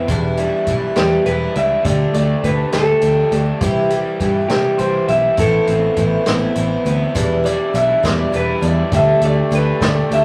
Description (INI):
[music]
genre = folk rock and heartland rock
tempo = 68 BPM (dotted quarters)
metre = 6/8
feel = straight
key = E minor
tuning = A4 = 440 Hz
[part]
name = picked twelve-string acoustic guitar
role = accompaniment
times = 0.0-10.2 s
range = E2 to G4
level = -23 LUFS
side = equal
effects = none
[part]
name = crunchy overdriven guitar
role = riff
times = 0.0-10.2 s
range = E2 to G4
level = -28 LUFS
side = equal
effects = none
[part]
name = fingered electric bass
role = bass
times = 0.1-10.2 s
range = E1 to C3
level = -22 LUFS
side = equal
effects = none
[part]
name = vintage drum kit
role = drums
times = 0.1-10.2 s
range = hi-hat, kick drum, snare drum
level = -25 LUFS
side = equal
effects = none
[part]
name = electric guitar through a small old amp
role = melody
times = 1.0-10.2 s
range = G4 to E5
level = -20 LUFS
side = equal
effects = none
[part]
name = pedal harmonium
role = sustained chords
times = 7.2-10.2 s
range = G3 to D5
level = -29 LUFS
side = equal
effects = none
[sound]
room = moderate booth ambience, RT60 0.2 s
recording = rough rehearsal-room recording, tube saturation, studio ambience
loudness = -16 LUFS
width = mono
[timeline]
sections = 0.0-7.1 A section; 7.1-10.2 B section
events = clean electric guitar solo 7.1-10.2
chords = 0.1 Em7; 1.8 Dsus4; 3.6 C; 5.4 Amadd9; 7.1 Em7; 8.9 Dsus4